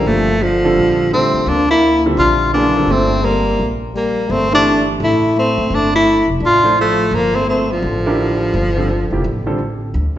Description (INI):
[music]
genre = jazz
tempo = 170 BPM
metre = 4/4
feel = swing 62% on 8ths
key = unclear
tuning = A4 = 440 Hz
[part]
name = clear tenor saxophone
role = melody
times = 0.0-9.6 s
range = F3 to F4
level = -14 LUFS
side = equal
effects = none
[part]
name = mellow trombone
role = second line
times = 0.0-9.6 s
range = D3 to D4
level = -22 LUFS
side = left 3 dB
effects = none
[part]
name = clear grand piano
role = accompaniment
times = 0.0-9.6 s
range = C3 to D5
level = -21 LUFS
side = right 2 dB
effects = none
[part]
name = upright bass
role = bass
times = 0.0-10.2 s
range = F1 to D2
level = -22 LUFS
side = equal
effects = none
[sound]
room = wet recital hall reverb, RT60 1.8 s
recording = recorded in a church or concert hall, nothing above 7.9 kHz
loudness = -13 LUFS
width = side -12 dB against mid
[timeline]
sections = 0.0-9.9 A section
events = none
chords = 0.0 Gm9; 4.3 Dmadd9